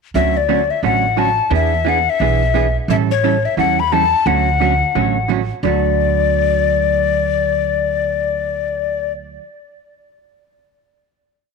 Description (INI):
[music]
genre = country, western swing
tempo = 175 BPM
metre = 4/4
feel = swing 62% on 8ths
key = D major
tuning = A4 = 436 Hz
[part]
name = upright bass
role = bass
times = 0.1-9.4 s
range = A1 to E2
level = -21 LUFS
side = right 2 dB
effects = none
[part]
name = mellow hollow tenor recorder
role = melody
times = 0.2-9.1 s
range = C#5 to B5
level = -17 LUFS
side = left 10 dB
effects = none
[part]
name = vintage hollow-body jazz guitar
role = accompaniment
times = 0.2-9.4 s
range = D3 to A4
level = -20 LUFS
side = right 18 dB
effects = none
[sound]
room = light reverb, small room reverb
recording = 1960s-style stereo with parts hard left and right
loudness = -14 LUFS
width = side -4 dB against mid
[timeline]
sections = 0.1-5.6 A section; 5.6-8.4 final chord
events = none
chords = 0.1 Dmaj7; 1.5 E7; 2.9 A7; 4.3 Dmaj7; 5.6 D